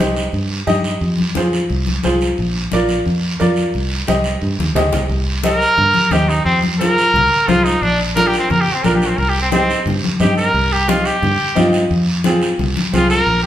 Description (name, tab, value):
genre	latin, cumbia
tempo	176 BPM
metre	4/4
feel	straight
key	C minor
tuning	A4 = 440 Hz
part	bright upright piano	accompaniment	0.0-13.2 s	C4 to Eb5	-20 LUFS	equal	none
part	fingered electric bass	bass	0.0-13.5 s	Bb1 to G2	-19 LUFS	equal	none
part	guiro	percussion	0.0-13.5 s	none	-26 LUFS	right 3 dB	none
part	congas	percussion	0.3-13.4 s	none	-21 LUFS	left 3 dB	none
part	bright trumpet	melody	5.4-13.5 s	C4 to Bb4	-16 LUFS	equal	none
room	wet large studio reverb, RT60 1.2 s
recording	band playing live in one room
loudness	-13 LUFS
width	side -12 dB against mid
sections	0.0-5.1 A section; 5.1-13.5 B section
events	drum fill 4.6-5.1; trumpet solo 5.1-13.5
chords	0.0 Cm; 1.0 Fm; 2.4 Bb; 3.7 Cm; 6.5 Fm; 7.8 Bb; 9.2 Cm; 11.9 Fm